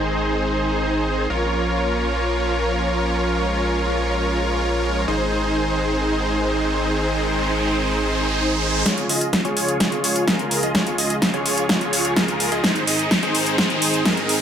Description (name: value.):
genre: EDM, festival progressive house.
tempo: 127 BPM.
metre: 4/4.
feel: straight.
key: Ab major.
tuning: A4 = 443 Hz.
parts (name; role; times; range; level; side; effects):
supersaw pad; sustained chords; 0.0-14.4 s; Db2 to Eb5; -27 LUFS; right 1 dB; sidechain pumping, low-pass filter.
dense compressed supersaw; riff; 0.0-14.4 s; Eb4 to Eb5; -21 LUFS; equal; sidechain pumping, low-pass filter, dub echo.
saturated sub bass; bass; 0.0-8.8 s; Ab1 to Bb1; -26 LUFS; equal; tube saturation, sidechain pumping.
big-room dance drum kit; drums; 0.0-14.4 s; hi-hat, snare drum; -21 LUFS; equal; low-pass filter on hats, low-pass filter on snare, low-pass filter on room.
riser; sound effects; 6.0-14.4 s; none; -28 LUFS; equal; none.
electronic kick drum; drums; 8.9-14.2 s; none; -30 LUFS; equal; none.
room: light reverb, digital ambience.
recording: none.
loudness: -18 LUFS.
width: side -8 dB against mid.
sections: 0.0-8.9 A section; 8.9-14.4 B section.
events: riser 6.0-8.9, 8.9-14.4; build-up 8.9-14.4; drum fill 8.9-14.4; filter sweep on supersaw synth 8.9-14.4.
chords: 0.0 Ab; 1.3 Bbm; 5.1 Ab; 8.9 Db; 12.6 Ab.